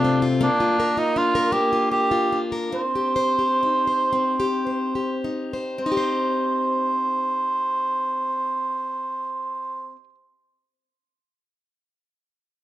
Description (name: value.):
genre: celtic folk, Celtic slow air.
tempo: 49-84 BPM.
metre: 3/4.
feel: rubato.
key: C minor.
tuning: A4 = 440 Hz.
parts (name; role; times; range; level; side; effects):
warm cor anglais; melody; 0.0-10.0 s; D4 to C5; -22 LUFS; right 2 dB; none.
picked plugged-in steel-string acoustic guitar; accompaniment; 0.0-10.1 s; C3 to C5; -24 LUFS; left 2 dB; none.
room: light reverb.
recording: close, detailed microphones.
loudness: -20 LUFS.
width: side -14 dB against mid.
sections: 0.0-5.8 A section; 5.8-9.3 B section.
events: slowing down 0.4-5.8.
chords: 0.4 Bb; 2.7 Cm.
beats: | 0.41 1.16 1.92 | 2.73 3.62 4.66 | 5.83 7.01 8.14.